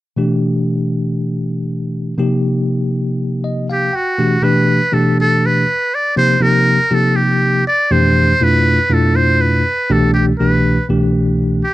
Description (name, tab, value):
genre	jazz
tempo	120 BPM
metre	4/4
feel	swing 54% on 16ths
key	G mixolydian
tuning	A4 = 440 Hz
part	bell-like tine electric piano	accompaniment	0.2-11.6 s	C2 to G5	-14 LUFS	equal	medium stereo tremolo
part	trumpet with metal mute	melody	3.7-11.7 s	F#4 to D5	-15 LUFS	right 1 dB	none
room	light reverb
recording	dry, close 1970s-style studio recording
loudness	-12 LUFS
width	side -16 dB against mid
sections	0.2-4.2 A section; 4.2-11.7 B section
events	tine electric piano fill 3.2-4.2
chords	0.2 Gadd9; 2.2 Ebadd9; 3.9 N.C.; 4.2 Gadd9; 6.2 Ebadd9; 7.9 Fmaj9; 9.9 Cmaj9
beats	| 0.18 0.68 1.18 1.68 | 2.18 2.68 3.18 3.67 | 4.17 4.67 5.17 5.67 | 6.17 6.67 7.17 7.66 | 8.16 8.66 9.16 9.66 | 10.16 10.66 11.16 11.66